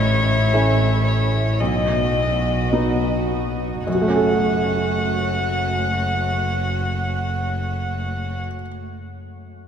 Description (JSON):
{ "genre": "neoclassical piano and strings", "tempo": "53 BPM", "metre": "4/4", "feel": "rubato", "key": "F# dorian", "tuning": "A4 = 435 Hz", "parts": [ { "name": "dark violin", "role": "melody", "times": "0.0-8.4 s", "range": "C#5 to F#5", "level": "-25 LUFS", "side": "left 2 dB", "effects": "none" }, { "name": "felt-muted upright piano", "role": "accompaniment", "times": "0.0-9.7 s", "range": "B1 to A4", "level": "-22 LUFS", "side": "right 1 dB", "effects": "none" }, { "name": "dark symphonic string section", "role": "sustained chords", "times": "0.0-8.4 s", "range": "A3 to E5", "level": "-29 LUFS", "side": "right 2 dB", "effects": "none" }, { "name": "rich double bass", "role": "bass", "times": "0.0-8.4 s", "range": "F#1 to B1", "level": "-23 LUFS", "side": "equal", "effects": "none" } ], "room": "wet cathedral reverb, RT60 4.5 s", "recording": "recorded in a church or concert hall", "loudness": "-18 LUFS", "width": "side -8 dB against mid", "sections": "0.0-3.9 A section; 3.9-8.4 B section", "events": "slowing down 0.0-3.9", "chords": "0.0 A; 1.6 B; 3.9 F#m" }